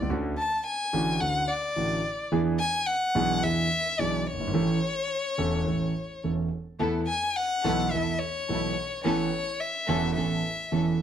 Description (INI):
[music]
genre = tango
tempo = 107 BPM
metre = 4/4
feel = rubato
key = A major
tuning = A4 = 439 Hz
[part]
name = warm violin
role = second line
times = 0.0-11.0 s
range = C#5 to A5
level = -28 LUFS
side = left 2 dB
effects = none
[part]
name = warm concert grand piano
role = accompaniment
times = 0.0-11.0 s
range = E1 to A4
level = -27 LUFS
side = right 2 dB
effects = none
[part]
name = dark chamber string section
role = stabs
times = 6.8-11.0 s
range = B3 to A4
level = -34 LUFS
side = equal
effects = none
[sound]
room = moderate studio reverb, RT60 0.8 s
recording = none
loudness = -25 LUFS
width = side -9 dB against mid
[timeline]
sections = 0.0-11.0 A section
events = violin solo 0.0-11.0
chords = 0.1 Dmaj7; 2.3 E7; 4.5 A; 6.8 Esus4; 9.0 Aadd9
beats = | 0.09 0.65 1.20 1.76 | 2.32 2.87 3.43 3.99 | 4.55 5.11 5.67 6.24 | 6.80 7.36 7.93 8.49 | 9.05 9.61 10.16 10.72